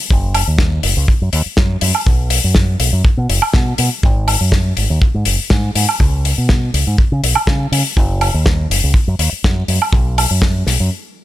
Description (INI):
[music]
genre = nu-disco, nu disco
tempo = 122 BPM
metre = 4/4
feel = swing 53% on 16ths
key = unclear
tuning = A4 = 440 Hz
[part]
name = fingered electric bass with an envelope filter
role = bass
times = 0.1-10.9 s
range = F#1 to C#3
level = -16 LUFS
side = equal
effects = none
[part]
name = kick drum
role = drums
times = 0.1-10.5 s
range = none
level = -14 LUFS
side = equal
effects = none
[part]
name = damped 70s drum kit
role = drums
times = 0.3-10.8 s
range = hi-hat, snare drum, woodblock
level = -18 LUFS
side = left 1 dB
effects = none
[sound]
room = little or no reverb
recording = none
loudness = -12 LUFS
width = side -14 dB against mid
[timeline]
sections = 0.0-11.2 A section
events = stop 10.9-11.2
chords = none